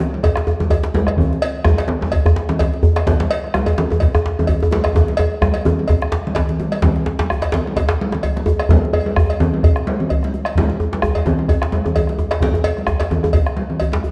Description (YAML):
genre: west african traditional, West African drum ensemble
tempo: 128 BPM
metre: 4/4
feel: swing 56% on 16ths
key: none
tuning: none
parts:
  - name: congas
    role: percussion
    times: 0.0-14.0 s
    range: none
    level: -24 LUFS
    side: equal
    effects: none
  - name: djembe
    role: percussion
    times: 0.0-14.1 s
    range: none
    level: -25 LUFS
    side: equal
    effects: none
  - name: bombo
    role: percussion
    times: 0.2-14.1 s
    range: none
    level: -24 LUFS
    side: equal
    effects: none
  - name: cowbell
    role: percussion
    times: 0.2-13.9 s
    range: none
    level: -28 LUFS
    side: equal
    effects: none
  - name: djembe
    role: percussion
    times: 0.2-14.0 s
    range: none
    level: -20 LUFS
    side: equal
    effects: none
room: wet recital hall reverb, RT60 1.3 s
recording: worn, warbling old tape, cassette tape, warbly pitch drift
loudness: -17 LUFS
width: mono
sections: 0.0-6.8 A section; 6.8-14.1 B section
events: drum fill 4.9-6.8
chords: none